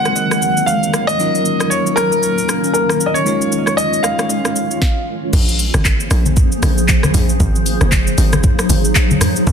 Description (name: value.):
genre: amapiano.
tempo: 116 BPM.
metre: 4/4.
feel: swing 58% on 16ths.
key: unclear.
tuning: A4 = 440 Hz.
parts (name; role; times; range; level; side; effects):
warm baby grand piano; melody; 0.0-5.0 s; Bb4 to Gb5; -17 LUFS; equal; ping-pong delay.
bell-like tine electric piano; accompaniment; 0.0-4.8 s; Gb3 to Db5; -21 LUFS; left 2 dB; medium stereo tremolo.
granular cloud pad; sustained chords; 0.0-9.5 s; Eb3 to Db5; -20 LUFS; right 1 dB; built-in reverb, sidechain pumping.
afro-pop drum kit; drums; 0.1-9.5 s; crash cymbal, handclaps, hi-hat, kick drum, rim click, shaker, snare drum; -17 LUFS; equal; none.
hollow log drum bass; bass; 5.3-9.5 s; Gb1 to Eb2; -16 LUFS; equal; none.
congas; percussion; 5.3-9.5 s; none; -20 LUFS; left 2 dB; none.
room: light reverb.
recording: dense, heavily limited modern master.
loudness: -13 LUFS.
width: side -7 dB against mid.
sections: 0.0-5.3 A section; 5.3-9.5 B section.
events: drop 5.3-9.5.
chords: 0.0 Ab9; 1.2 Ebm7; 3.3 Dbadd9; 5.3 Bbm9; 7.4 Ab9.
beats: 0.16 0.68 | 1.20 1.71 2.23 2.75 | 3.27 3.78 4.30 4.82 | 5.33 5.85 6.37 6.88 | 7.40 7.92 8.44 8.95 | 9.47.